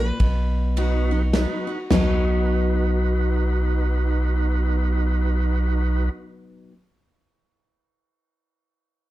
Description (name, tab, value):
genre	honky-tonk and classic country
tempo	105 BPM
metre	3/4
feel	swing 61% on 8ths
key	B major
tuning	A4 = 440 Hz
part	picked steel-string acoustic guitar	melody	0.0-1.3 s	B4	-32 LUFS	right 1 dB	none
part	picked steel-string acoustic guitar	accompaniment	0.0-6.7 s	A#2 to F#4	-27 LUFS	left 3 dB	none
part	tonewheel organ	accompaniment	0.0-6.1 s	D#4 to B4	-29 LUFS	right 6 dB	slow rotary speaker, overdrive
part	warm sub bass	bass	0.0-6.1 s	A#1 to B1	-21 LUFS	equal	none
part	natural country drum kit	drums	0.2-2.1 s	crash cymbal, kick drum, ride cymbal, snare drum, toms	-22 LUFS	equal	none
room	light reverb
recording	dark, warm production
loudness	-19 LUFS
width	side -15 dB against mid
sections	0.0-1.9 A section; 1.9-5.3 B section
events	none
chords	0.2 B